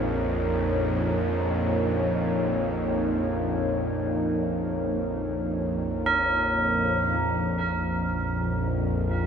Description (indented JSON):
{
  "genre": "dark ambient drone",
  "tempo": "free time",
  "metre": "none",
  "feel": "none",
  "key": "Bb minor",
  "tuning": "A4 = 438 Hz",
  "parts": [
    { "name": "dark analog pad", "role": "sustained chords", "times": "0.0-9.3 s", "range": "Bb3 to Db5", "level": "-28 LUFS", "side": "equal", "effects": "chorus, phaser" },
    { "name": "tubular bells", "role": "arpeggios", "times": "0.0-9.3 s", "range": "Bb4", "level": "-26 LUFS", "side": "right 2 dB", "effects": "diffuse ambient delay" },
    { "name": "bowed-like drone", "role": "drone", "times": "0.0-9.3 s", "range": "Bb1 to F2", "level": "-27 LUFS", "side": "equal", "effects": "built-in reverb" }
  ],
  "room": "wet cathedral reverb, RT60 5.4 s",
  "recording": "none",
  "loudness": "-23 LUFS",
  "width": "side -7 dB against mid",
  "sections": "0.0-7.2 A section; 7.2-9.3 B section",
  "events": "filter sweep on synth drone 7.2-9.3",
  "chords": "0.0 Bbm"
}